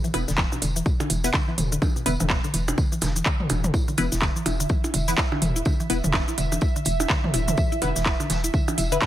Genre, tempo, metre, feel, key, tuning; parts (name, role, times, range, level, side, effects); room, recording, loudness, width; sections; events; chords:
minimal techno; 125 BPM; 4/4; swing 60% on 16ths; A4 = 441 Hz
mallet-like synth pluck; riff; 0.0-9.0 s; B2 to E4; -30 LUFS; equal; chorus, sidechain pumping, dub echo
booming analog drum machine; drums; 0.0-9.1 s; cabasa, handclaps, hi-hat; -27 LUFS; equal
filtered dub chord stab; stabs; 0.1-9.0 s; B3 to B4; -30 LUFS; left 2 dB; phaser, tape echo
hollow knocking FM bass; bass; 0.1-9.0 s; E1; -27 LUFS; equal; sidechain pumping
vintage drum kit; drums; 0.1-9.1 s; hi-hat, snare drum, tambourine; -38 LUFS; equal; high-pass filter on hats, high-pass filter on snare, high-pass filter on perc, high-pass filter on room
electronic percussion blips and toms; percussion; 0.1-9.1 s; -30 LUFS; right 1 dB; tape echo
electronic kick drum; drums; 0.4-9.1 s; -24 LUFS; equal
pulsing gated texture; texture; 3.7-9.1 s; E5; -32 LUFS; right 3 dB; chorus, built-in reverb, sidechain pumping
little or no reverb; -21 LUFS; side -13 dB against mid
0.0-9.1 A section
0.0 E5